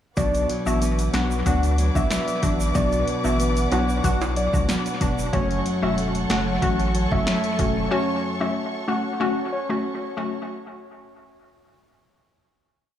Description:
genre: dancehall.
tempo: 93 BPM.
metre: 4/4.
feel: straight.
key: F# minor.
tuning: A4 = 437 Hz.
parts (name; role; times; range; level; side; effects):
soft octave-layered synth lead; melody; 0.2-9.7 s; C#5 to F#5; -28 LUFS; equal; chorus, dub echo.
hollow square pluck; accompaniment; 0.2-10.3 s; A3 to F#4; -27 LUFS; left 3 dB; chorus, sidechain pumping, dub echo.
dark studio string section; sustained chords; 0.2-10.5 s; A4 to D6; -31 LUFS; equal; sidechain pumping.
flamenco guitar; arpeggios; 0.2-8.5 s; F#2 to D4; -28 LUFS; right 2 dB; dub echo.
saturated sub bass; bass; 0.2-7.9 s; E1 to D2; -24 LUFS; equal; none.
deep house drum kit; drums; 0.2-7.7 s; finger snaps, hi-hat, kick drum, snare drum; -26 LUFS; equal; overdrive, dub echo.
tube shaker and timbales; percussion; 0.2-5.3 s; none; -35 LUFS; right 5 dB; dub echo.
room: light reverb.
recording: echo-heavy mix, studio reverb.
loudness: -20 LUFS.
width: side -10 dB against mid.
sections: 0.2-10.5 chorus.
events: none.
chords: 0.2 Bm; 5.3 F#m.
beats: | 0.17 0.82 1.46 2.11 | 2.75 3.40 4.04 4.69 | 5.33 5.98 6.62 7.27 | 7.91 8.56 9.20 9.85.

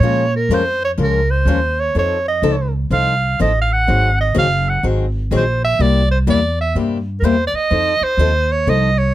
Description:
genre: acoustic string swing (jazz manouche).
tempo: 125 BPM.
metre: 4/4.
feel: swing 63% on 8ths.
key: unclear.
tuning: A4 = 440 Hz.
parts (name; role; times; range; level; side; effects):
clear clarinet; melody; 0.0-9.1 s; Bb4 to Gb5; -18 LUFS; right 2 dB; none.
picked steel-string acoustic guitar; accompaniment; 0.0-8.9 s; C3 to Bb4; -20 LUFS; left 5 dB; none.
upright bass; bass; 0.0-9.1 s; Gb1 to Bb2; -17 LUFS; equal; none.
room: light reverb.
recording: none.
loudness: -14 LUFS.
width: side -14 dB against mid.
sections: 0.0-9.1 A section.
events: none.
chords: 0.0 Bbm7; 1.9 F7b13; 3.9 Ab7; 5.8 C7; 7.7 F7.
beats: | 0.02 0.50 0.98 1.46 | 1.94 2.42 2.90 3.38 | 3.86 4.34 4.82 5.30 | 5.79 6.26 6.75 7.23 | 7.71 8.19 8.67.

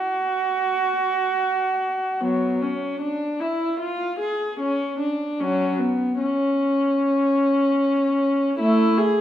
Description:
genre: classical, baroque-style suite movement for unaccompanied viola.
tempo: 75 BPM.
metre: 4/4.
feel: rubato.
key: unclear.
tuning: A4 = 443 Hz.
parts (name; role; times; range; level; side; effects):
dark viola; solo; 0.0-9.2 s; F#3 to G#4; -20 LUFS; equal; none.
room: wet stone room reverb, RT60 1.3 s.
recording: heard from further back in the room.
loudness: -20 LUFS.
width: side -11 dB against mid.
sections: 0.0-9.2 A section.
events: none.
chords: none.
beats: 0.56 1.38 | 2.20 3.01 3.79 4.59 | 5.38 6.18 6.98 7.79 | 8.59.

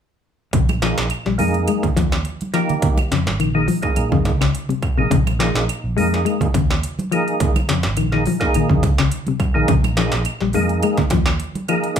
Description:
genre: afrobeat.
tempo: 105 BPM.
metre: 4/4.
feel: swing 54% on 16ths.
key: Bb dorian.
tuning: A4 = 439 Hz.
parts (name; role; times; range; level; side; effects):
semi-hollow electric guitar; arpeggios; 0.5-11.9 s; C3 to Ab3; -22 LUFS; left 7 dB; none.
fingered electric bass; bass; 0.5-11.4 s; Ab1 to Bb2; -22 LUFS; right 1 dB; none.
industrial drum kit; drums; 0.5-12.0 s; hi-hat, kick drum, snare drum; -21 LUFS; right 1 dB; distortion.
congas; percussion; 0.5-11.7 s; none; -26 LUFS; right 5 dB; none.
claves; percussion; 0.7-11.8 s; none; -31 LUFS; right 6 dB; none.
percussive tonewheel organ; accompaniment; 0.8-12.0 s; Bb3 to Ab4; -22 LUFS; right 3 dB; slow rotary speaker, chorus vibrato.
room: moderate large studio reverb, RT60 0.9 s.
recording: band playing live in one room.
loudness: -16 LUFS.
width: side -8 dB against mid.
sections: 0.5-12.0 A section.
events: none.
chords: 0.5 Bbm7.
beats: | 0.54 1.11 1.69 2.26 | 2.83 3.40 3.98 4.55 | 5.12 5.69 6.26 6.83 | 7.41 7.98 8.55 9.12 | 9.69 10.26 10.83 11.40 | 11.97.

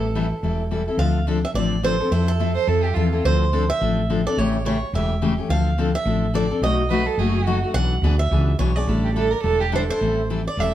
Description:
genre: acoustic string swing (jazz manouche).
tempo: 213 BPM.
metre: 4/4.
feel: swing 58% on 8ths.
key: D minor.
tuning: A4 = 440 Hz.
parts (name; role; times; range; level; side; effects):
picked swing-style acoustic guitar; melody; 0.0-10.7 s; A4 to F#5; -27 LUFS; right 3 dB; none.
picked steel-string acoustic guitar; accompaniment; 0.0-10.7 s; B2 to A4; -23 LUFS; left 4 dB; none.
woody fretless electric bass; bass; 0.0-10.7 s; E1 to F2; -22 LUFS; right 1 dB; none.
warm violin; second line; 2.6-3.2, 6.9-10.0 s; F4 to C5; -24 LUFS; right 6 dB; none.
room: wet studio reverb, RT60 0.7 s.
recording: band playing live in one room.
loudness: -18 LUFS.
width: side -12 dB against mid.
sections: 1.0-10.0 A section.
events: none.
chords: 0.0 Am7; 1.0 Dm7; 2.1 Fmaj7; 3.2 Dm7; 4.4 A7; 5.5 Dm7; 6.6 B7; 7.8 E7/B; 8.9 A7sus4; 10.0 Am7.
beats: 0.14 0.42 0.71 | 0.99 1.27 1.55 1.83 | 2.12 2.40 2.68 2.96 | 3.24 3.52 3.81 4.09 | 4.37 4.65 4.93 5.21 | 5.50 5.78 6.06 6.34 | 6.62 6.91 7.19 7.47 | 7.75 8.03 8.31 8.60 | 8.88 9.16 9.44 9.73 | 10.01 10.29 10.57.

